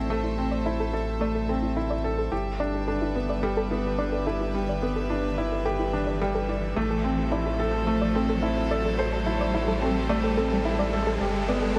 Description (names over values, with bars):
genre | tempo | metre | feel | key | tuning
piano and strings electronica | 108 BPM | 4/4 | straight | A minor | A4 = 441 Hz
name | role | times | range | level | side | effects
rich chamber string section | sustained chords | 0.0-11.8 s | G3 to E5 | -35 LUFS | equal | none
soft round pluck | arpeggios | 0.0-11.8 s | E4 to A5 | -35 LUFS | equal | chorus, tape echo
felt-muted upright piano | riff | 0.0-11.8 s | G3 to D5 | -30 LUFS | equal | tape echo
warm sub bass | bass | 0.0-11.8 s | G1 to A1 | -33 LUFS | equal | none
riser | sound effects | 2.5-11.8 s | none | -36 LUFS | equal | none
room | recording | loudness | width
moderate lush hall reverb, RT60 2.4 s | none | -26 LUFS | mono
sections
0.0-11.8 A section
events
build-up 0.0-11.8; filter sweep on synth arpeggio sound 0.0-11.8; riser 2.5-11.8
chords
0.0 Am; 2.3 G6; 6.8 Am; 11.2 G6